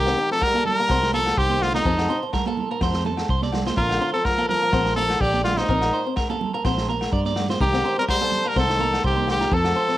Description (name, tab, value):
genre	highlife guitar band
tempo	125 BPM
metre	4/4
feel	swing 54% on 16ths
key	Bb major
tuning	A4 = 440 Hz
part	brilliant trumpet	melody	0.0-10.0 s	Eb4 to C5	-21 LUFS	equal	cassette tape
part	clear trombone	second line	0.0-10.0 s	Bb2 to G3	-32 LUFS	left 6 dB	cassette tape
part	fingerpicked swing-style acoustic guitar	accompaniment	0.0-10.0 s	A3 to F4	-31 LUFS	left 6 dB	cassette tape
part	electric guitar at the edge of break-up	arpeggios	0.0-10.0 s	A4 to D5	-27 LUFS	right 5 dB	spring reverb, cassette tape, plate reverb
part	fingered electric bass	bass	0.0-9.7 s	Bb1 to G2	-26 LUFS	equal	none
part	vintage drum kit	drums	0.1-9.9 s	kick drum, snare drum	-28 LUFS	equal	cassette tape
part	agogo bells	percussion	0.1-9.8 s	none	-34 LUFS	left 7 dB	none
part	congas	percussion	0.5-9.5 s	none	-31 LUFS	right 7 dB	none
room	moderate studio reverb, RT60 0.6 s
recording	home recording on cassette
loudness	-19 LUFS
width	side -14 dB against mid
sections	0.0-10.0 A section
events	none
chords	0.0 Cm; 3.8 Bb; 5.7 Bb69; 7.6 F